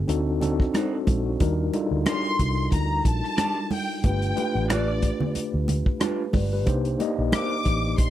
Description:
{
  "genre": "lush 1970s-style soul",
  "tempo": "91 BPM",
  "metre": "4/4",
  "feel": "swing 54% on 16ths",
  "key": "unclear",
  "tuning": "A4 = 442 Hz",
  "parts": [
    { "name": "mellow tine electric piano", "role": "accompaniment", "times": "0.0-8.1 s", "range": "G3 to Eb5", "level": "-27 LUFS", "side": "left 2 dB", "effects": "medium stereo tremolo" },
    { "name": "vintage muted fingered electric bass", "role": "bass", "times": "0.0-8.1 s", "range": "G1 to Eb2", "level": "-26 LUFS", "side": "equal", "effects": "none" },
    { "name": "warm soul drum kit", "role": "drums", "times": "0.1-8.1 s", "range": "hi-hat, kick drum, rim click", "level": "-25 LUFS", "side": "equal", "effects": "none" },
    { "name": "congas", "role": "percussion", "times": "0.1-8.1 s", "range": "none", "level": "-30 LUFS", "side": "right 4 dB", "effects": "none" },
    { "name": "electric guitar through a small old amp", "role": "riff", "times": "0.7-7.5 s", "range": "D4 to C5", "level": "-31 LUFS", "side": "right 4 dB", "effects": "phaser" },
    { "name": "warm studio violin section", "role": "melody", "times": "2.1-8.1 s", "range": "D5 to D6", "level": "-29 LUFS", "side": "left 1 dB", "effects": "none" }
  ],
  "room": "light reverb",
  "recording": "none",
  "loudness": "-22 LUFS",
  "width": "side -12 dB against mid",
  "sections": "0.0-1.4 A section; 1.4-8.1 B section",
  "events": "none",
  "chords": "0.1 D7b9; 1.4 Ebmaj7; 4.0 G7; 6.7 Cm7",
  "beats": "0.08 0.74 | 1.40 2.06 2.72 3.38 | 4.04 4.70 5.36 6.01 | 6.67 7.33 7.99"
}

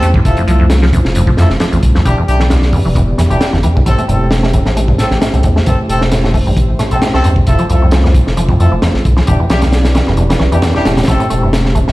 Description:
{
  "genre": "breakbeat, breaks",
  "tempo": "133 BPM",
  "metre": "4/4",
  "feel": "swing 54% on 16ths",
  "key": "A minor",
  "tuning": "A4 = 440 Hz",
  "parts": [
    { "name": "dark analog pad", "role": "sustained chords", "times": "0.0-11.9 s", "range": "A3 to D5", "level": "-21 LUFS", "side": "right 1 dB", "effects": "chorus, sidechain pumping" },
    { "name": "deep acid bass", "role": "riff", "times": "0.0-11.9 s", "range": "E1 to A3", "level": "-16 LUFS", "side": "equal", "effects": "analog chorus, ping-pong delay" },
    { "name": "warm horn section", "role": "stabs", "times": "0.0-11.5 s", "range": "C4 to A4", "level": "-20 LUFS", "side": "left 1 dB", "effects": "ping-pong delay" },
    { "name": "saturated sub bass", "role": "bass", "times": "0.0-11.9 s", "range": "E1 to A2", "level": "-13 LUFS", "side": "equal", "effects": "none" },
    { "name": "crunchy breakbeat drum kit", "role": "drums", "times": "0.0-11.9 s", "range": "hi-hat, kick drum, snare drum", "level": "-14 LUFS", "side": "equal", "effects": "none" }
  ],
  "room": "light reverb",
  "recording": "played on a big sound system in a bare room, stone room reverb, vinyl crackle",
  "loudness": "-9 LUFS",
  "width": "side -18 dB against mid",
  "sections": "0.0-11.9 A section",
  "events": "none",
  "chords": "0.3 Fmaj7; 2.1 Em7; 3.9 Am7; 7.5 Fmaj7; 9.3 Em7; 11.1 Am7",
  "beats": "| 0.25 0.70 1.15 1.60 | 2.06 2.51 2.96 3.41 | 3.86 4.31 4.76 5.21 | 5.66 6.12 6.57 7.02 | 7.47 7.92 8.37 8.82 | 9.27 9.72 10.18 10.63 | 11.08 11.53"
}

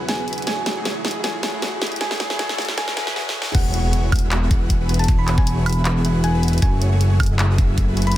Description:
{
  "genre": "future bass",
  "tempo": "156 BPM",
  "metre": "4/4",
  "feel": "half-time",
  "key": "E major",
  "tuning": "A4 = 443 Hz",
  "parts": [
    { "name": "barky tine electric piano", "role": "accompaniment", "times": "0.0-3.6 s", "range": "F#3 to G#4", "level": "-34 LUFS", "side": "right 2 dB", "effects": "sidechain pumping, ping-pong delay" },
    { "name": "ethereal airy pad", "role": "sustained chords", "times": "0.0-3.1 s", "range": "E2 to G#4", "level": "-38 LUFS", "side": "right 4 dB", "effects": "ensemble chorus, built-in reverb, sidechain pumping" },
    { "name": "dense compressed supersaw", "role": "riff", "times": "0.0-8.1 s", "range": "A3 to F#5", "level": "-28 LUFS", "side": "equal", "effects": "sidechain pumping" },
    { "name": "riser and impact", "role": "sound effects", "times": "0.0-5.1 s", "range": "none", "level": "-32 LUFS", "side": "equal", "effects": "none" },
    { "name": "thumb-piano-like synth pluck", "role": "melody", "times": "0.1-8.2 s", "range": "F#5 to B5", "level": "-29 LUFS", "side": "equal", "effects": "chorus, sidechain pumping, digital delay" },
    { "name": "dubstep drum kit", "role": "drums", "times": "0.1-8.2 s", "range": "crash cymbal, handclaps, hi-hat, snare drum, woodblock", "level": "-25 LUFS", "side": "equal", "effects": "high-pass filter on snare, high-pass filter on hats, high-pass filter on cymbals, high-pass filter on perc" },
    { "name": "fat analog bass", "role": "bass", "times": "3.5-8.2 s", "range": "E1 to F#1", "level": "-18 LUFS", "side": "equal", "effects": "sidechain pumping" },
    { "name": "electronic kick drum", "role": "drums", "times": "3.5-7.9 s", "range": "none", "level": "-18 LUFS", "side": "equal", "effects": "none" }
  ],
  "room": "digital ambience",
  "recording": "high-pass filter",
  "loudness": "-17 LUFS",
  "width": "side -14 dB against mid",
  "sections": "0.0-3.5 A section; 3.5-8.2 B section",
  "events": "build-up 0.0-3.5; drum fill 0.0-3.2, 3.2-3.5; riser 0.0-3.2; filter sweep on supersaw synth 0.0-3.5; filter sweep 0.0-3.5; drop 3.5-8.2; impact 3.5-5.1",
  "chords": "0.5 F#m9; 3.5 E69; 6.6 F#m9",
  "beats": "0.09 | 0.47 0.85 1.24 1.62 | 2.01 2.39 2.78 3.16 | 3.55 3.93 4.32 4.70 | 5.08 5.47 5.85 6.24 | 6.62 7.01 7.39 7.78 | 8.16"
}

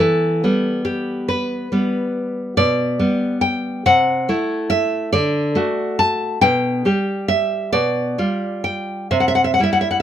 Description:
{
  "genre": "romantic piece for solo classical guitar",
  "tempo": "47 BPM (dotted quarters)",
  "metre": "6/8",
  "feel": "rubato",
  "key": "G major",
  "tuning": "A4 = 440 Hz",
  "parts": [
    { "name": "nylon-string guitar", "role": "solo", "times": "0.0-10.0 s", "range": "B2 to A5", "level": "-16 LUFS", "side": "equal", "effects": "none" }
  ],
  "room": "moderate studio ambience, RT60 0.5 s",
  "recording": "minimal, uncompressed stereo recording",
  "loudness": "-17 LUFS",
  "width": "side -10 dB against mid",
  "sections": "0.0-10.0 A section",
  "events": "none",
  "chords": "0.0 Em; 2.6 G/B; 3.9 Am/C; 5.1 D; 6.4 G/B; 7.7 G7/B; 9.1 C",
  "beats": "| 0.03 1.30 | 2.57 3.86 | 5.14 6.43 | 7.73 9.12"
}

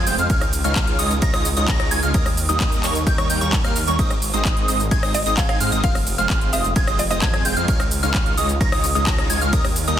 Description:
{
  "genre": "EDM, festival progressive house",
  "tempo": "130 BPM",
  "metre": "4/4",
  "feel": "straight",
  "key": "unclear",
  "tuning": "A4 = 441 Hz",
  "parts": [
    { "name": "plucky unison lead", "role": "arpeggios", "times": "0.0-10.0 s", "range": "Db6 to Bb6", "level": "-24 LUFS", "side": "equal", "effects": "phaser, cassette tape, sidechain pumping, tape echo" },
    { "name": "dense compressed supersaw", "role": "riff", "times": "0.0-10.0 s", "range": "G3 to Bb5", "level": "-26 LUFS", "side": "right 1 dB", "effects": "sidechain pumping, tape echo" },
    { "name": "wide detuned saw bass", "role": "bass", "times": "0.0-10.0 s", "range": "F1 to Ab2", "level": "-24 LUFS", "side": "equal", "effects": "chorus, sidechain pumping" },
    { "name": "big-room dance drum kit", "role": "drums", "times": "0.1-10.0 s", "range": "handclaps, hi-hat, ride cymbal, rim click, shaker", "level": "-25 LUFS", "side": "right 1 dB", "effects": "soft clipping on snare" },
    { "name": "electronic kick drum", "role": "drums", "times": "0.3-9.6 s", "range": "none", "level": "-21 LUFS", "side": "equal", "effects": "none" },
    { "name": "mallet-like synth pluck", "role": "melody", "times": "5.1-7.7 s", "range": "Eb5 to F5", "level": "-28 LUFS", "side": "right 1 dB", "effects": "chorus, tape echo" }
  ],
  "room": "light reverb",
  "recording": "dense, heavily limited modern master",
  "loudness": "-17 LUFS",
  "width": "side -10 dB against mid",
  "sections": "0.0-10.0 A section",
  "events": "none",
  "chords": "0.3 Dbadd9; 2.1 Eb; 4.0 Ab; 5.8 Fm; 7.7 Dbadd9",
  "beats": "| 0.30 0.76 1.22 1.68 | 2.15 2.61 3.07 3.53 | 3.99 4.45 4.91 5.38 | 5.84 6.30 6.76 7.22 | 7.68 8.14 8.61 9.07 | 9.53"
}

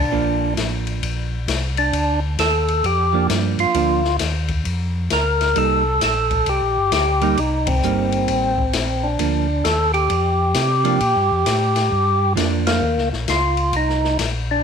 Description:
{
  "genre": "soul jazz organ trio",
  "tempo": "132 BPM",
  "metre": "4/4",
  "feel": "swing 65% on 8ths",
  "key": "G minor",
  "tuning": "A4 = 439 Hz",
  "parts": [
    { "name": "percussive tonewheel organ", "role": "melody", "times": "0.0-14.6 s", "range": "Bb3 to Bb4", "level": "-19 LUFS", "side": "equal", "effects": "slow rotary speaker, overdrive" },
    { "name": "mellow tonewheel organ", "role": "bass", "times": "0.0-14.6 s", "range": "G1 to C3", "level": "-22 LUFS", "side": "equal", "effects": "chorus vibrato, slow rotary speaker" },
    { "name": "hollow-body jazz guitar", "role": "accompaniment", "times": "0.1-12.8 s", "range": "F3 to Eb4", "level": "-24 LUFS", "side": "right 13 dB", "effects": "none" },
    { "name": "open jazz drum kit", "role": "drums", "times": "0.6-14.3 s", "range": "hi-hat, kick drum, ride cymbal, snare drum", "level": "-25 LUFS", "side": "left 6 dB", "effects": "none" }
  ],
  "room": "light reverb, small room ambience",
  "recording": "1960s-style stereo with parts hard left and right",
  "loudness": "-17 LUFS",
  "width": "side -6 dB against mid",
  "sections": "0.0-14.6 A section",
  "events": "band accent 7.6, 12.6",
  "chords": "0.0 Gm7; 5.6 Cm7; 9.2 Gm7; 12.8 Eb5",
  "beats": "| 0.12 0.57 1.02 1.48 | 1.93 2.38 2.84 3.29 | 3.75 4.20 4.65 5.11 | 5.56 6.01 6.47 6.92 | 7.37 7.83 8.28 8.74 | 9.19 9.64 10.10 10.55 | 11.01 11.46 11.92 12.37 | 12.83 13.28 13.74 14.19"
}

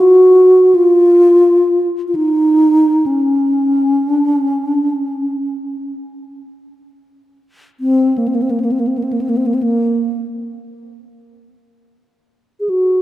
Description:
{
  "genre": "world meditative",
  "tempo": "free time",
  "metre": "none",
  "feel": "none",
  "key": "unclear",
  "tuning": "A4 = 440 Hz",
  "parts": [
    { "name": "mellow bass flute", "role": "solo", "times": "0.0-13.0 s", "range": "Bb3 to Ab4", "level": "-11 LUFS", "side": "equal", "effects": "analog delay" }
  ],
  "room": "wet spring reverb, RT60 1.8 s, small room reverb",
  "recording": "echo-heavy mix",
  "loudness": "-11 LUFS",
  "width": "side -15 dB against mid",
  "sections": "0.0-11.7 A section; 11.7-13.0 A section",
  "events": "none",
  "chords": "none",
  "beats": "free time"
}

